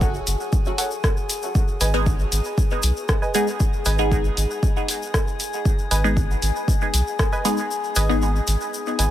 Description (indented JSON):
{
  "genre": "dub techno",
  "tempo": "117 BPM",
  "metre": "4/4",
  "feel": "straight",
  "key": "unclear",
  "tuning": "A4 = 440 Hz",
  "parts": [
    { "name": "filtered dub chord stab", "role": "stabs", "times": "0.0-9.1 s", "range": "F#3 to G#4", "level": "-26 LUFS", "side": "equal", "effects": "phaser, sidechain pumping, dub echo" },
    { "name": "soft dub sub bass", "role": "bass", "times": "0.0-9.1 s", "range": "F#1 to B1", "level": "-21 LUFS", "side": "equal", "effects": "sidechain pumping" },
    { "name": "electronic kick drum", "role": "drums", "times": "0.0-7.3 s", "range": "none", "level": "-21 LUFS", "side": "equal", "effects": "none" },
    { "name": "tube shaker", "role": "percussion", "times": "0.0-9.1 s", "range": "none", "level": "-32 LUFS", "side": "left 4 dB", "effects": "none" },
    { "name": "drifting glass-harmonics texture", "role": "texture", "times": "0.0-9.1 s", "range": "G#4", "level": "-30 LUFS", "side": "left 4 dB", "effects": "chorus, built-in reverb, sidechain pumping" },
    { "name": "punchy analog drum machine", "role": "drums", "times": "0.3-9.1 s", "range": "hi-hat, rim click", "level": "-27 LUFS", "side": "equal", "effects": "none" },
    { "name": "filtered dub chord stab", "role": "riff", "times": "0.8-9.1 s", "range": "A4 to G#5", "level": "-32 LUFS", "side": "right 3 dB", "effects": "chorus, sidechain pumping, dub echo" }
  ],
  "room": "light reverb",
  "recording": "none",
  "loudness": "-19 LUFS",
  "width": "side -12 dB against mid",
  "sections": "0.0-9.1 A section",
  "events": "kick drops out 7.7-9.1",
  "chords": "0.0 F#m; 1.6 G#m"
}